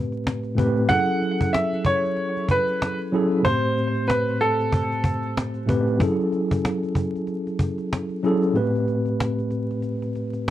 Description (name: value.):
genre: hip hop, boom-bap hip-hop.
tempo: 94 BPM.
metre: 4/4.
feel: swing 59% on 16ths.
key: F# minor.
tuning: A4 = 439 Hz.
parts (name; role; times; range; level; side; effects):
mellow tine electric piano; accompaniment; 0.0-10.5 s; A2 to C5; -23 LUFS; equal; medium stereo tremolo, cassette tape, high-pass filter, low-pass filter.
cajon; drums; 0.1-10.5 s; none; -25 LUFS; equal; vintage 12-bit sampler grit.
clear upright piano; melody; 0.9-5.3 s; A4 to F#5; -23 LUFS; right 1 dB; high-pass filter, low-pass filter, tape echo.
room: moderate small room reverb, RT60 0.5 s.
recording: dark, warm production, vinyl crackle.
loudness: -20 LUFS.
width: side -13 dB against mid.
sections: 0.0-10.5 A section.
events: kick muted 8.6-10.5.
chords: 0.0 Am9; 0.9 F#m9; 3.5 Am9; 6.0 F#m9; 8.6 Am9.